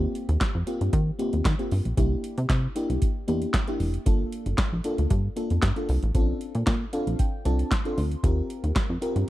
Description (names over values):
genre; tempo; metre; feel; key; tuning
early-eighties boogie funk; 115 BPM; 4/4; straight; unclear; A4 = 440 Hz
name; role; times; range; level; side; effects
FM electric piano with soft pad layer; accompaniment; 0.0-9.3 s; Bb3 to C6; -30 LUFS; left 1 dB; chorus
plucky analog bass; bass; 0.0-9.2 s; F1 to Eb3; -24 LUFS; equal; none
electro analog drum machine; drums; 0.2-9.3 s; handclaps, hi-hat, kick drum, snare drum; -25 LUFS; equal; none
room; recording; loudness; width
digital ambience; dry, close 1970s-style studio recording; -23 LUFS; side -16 dB against mid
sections
0.0-9.3 A section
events
FM electric piano fill 6.7-8.2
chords
0.0 Eb69; 2.0 C7; 4.1 Gm7; 6.1 Bbmaj7; 8.2 Eb69